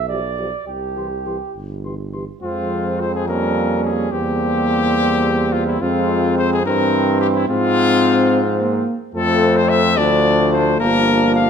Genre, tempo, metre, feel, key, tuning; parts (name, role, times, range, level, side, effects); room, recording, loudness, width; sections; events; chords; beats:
classical, brass quintet; 72 BPM (dotted quarters); 6/8; rubato; F minor; A4 = 441 Hz
warm flugelhorn; second line; 0.0-11.5 s; C4 to D5; -24 LUFS; right 5 dB
bright bass trombone; bass; 0.0-11.5 s; G1 to Ab2; -22 LUFS; right 2 dB
mellow trumpet; melody; 0.1-11.5 s; E4 to C6; -20 LUFS; left 5 dB
dark French horn; accompaniment; 0.1-11.5 s; Ab3 to G4; -20 LUFS; left 2 dB
mellow trombone; accompaniment; 0.1-11.5 s; E3 to Ab3; -24 LUFS; right 2 dB
moderate stone room reverb, RT60 1.1 s; -15 LUFS; side -7 dB against mid
0.0-2.4 A section; 2.4-11.5 B section
0.0 G7/B; 0.7 C; 2.4 Fm; 3.3 Gm7b5/F; 4.1 C7/E; 5.8 Fm; 6.7 C7/G; 7.5 Fm/Ab; 9.2 F; 10.0 Dm; 10.8 Gm7
| 0.67 1.55 | 2.43 3.28 | 4.12 4.97 | 5.81 6.66 | 7.49 8.32 | 9.15 9.98 | 10.80